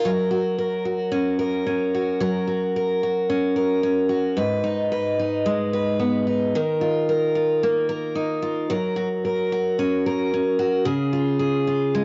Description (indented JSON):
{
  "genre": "pop",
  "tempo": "111 BPM",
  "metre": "4/4",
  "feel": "straight",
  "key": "F# major",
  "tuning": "A4 = 440 Hz",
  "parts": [
    { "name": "picked steel-string acoustic guitar", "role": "solo", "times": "0.0-12.0 s", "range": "G#2 to B4", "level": "-22 LUFS", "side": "equal", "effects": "cassette tape, analog delay" }
  ],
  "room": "wet studio ambience, RT60 0.5 s",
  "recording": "home recording on cassette, nothing above 7.7 kHz",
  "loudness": "-23 LUFS",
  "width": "mono",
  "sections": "0.0-12.0 A section",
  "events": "none",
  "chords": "0.0 F#; 4.4 G#m; 6.5 D#sus2; 8.7 F#; 10.9 C#",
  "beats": "| 0.04 0.59 1.13 1.67 | 2.21 2.75 3.29 3.83 | 4.37 4.91 5.45 5.99 | 6.53 7.08 7.62 8.16 | 8.70 9.24 9.78 10.32 | 10.86 11.40 11.95"
}